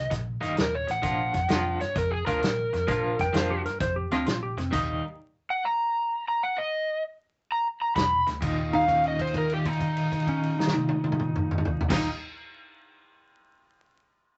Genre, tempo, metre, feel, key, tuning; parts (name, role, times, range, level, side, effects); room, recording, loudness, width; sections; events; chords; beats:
electric blues shuffle; 130 BPM; 4/4; swing 68% on 8ths; Eb major; A4 = 441 Hz
overdriven slide guitar; melody; 0.0-12.1 s; Eb4 to B5; -29 LUFS; equal
vintage muted fingered electric bass; bass; 0.0-5.0, 8.0-12.1 s; Eb1 to G2; -36 LUFS; equal
electric guitar at the edge of break-up; riff; 0.1-5.0, 8.0-12.1 s; Eb2 to F4; -32 LUFS; equal; tremolo
natural country drum kit; drums; 0.1-4.9, 8.0-12.0 s; crash cymbal, hi-hat, kick drum, snare drum, toms; -32 LUFS; equal
clean lap steel guitar; second line; 3.2-4.7, 8.7-12.1 s; C4 to G5; -33 LUFS; equal
wet club ambience, RT60 0.5 s; vinyl crackle, nothing above 8.0 kHz; -27 LUFS; mono
0.0-8.4 A section; 8.4-12.1 B section
stop 4.7-8.0; held note 8.4-11.8
0.0 Eb; 1.0 Bb; 4.7 Eb; 8.0 E7(no3); 8.4 Eb
0.11 0.57 | 1.04 1.50 1.96 2.42 | 2.88 3.34 3.81 4.27 | 4.73 5.19 5.65 6.11 | 6.57 7.04 7.50 7.96 | 8.42 8.88 9.34 9.80 | 10.27 10.73 11.19 11.65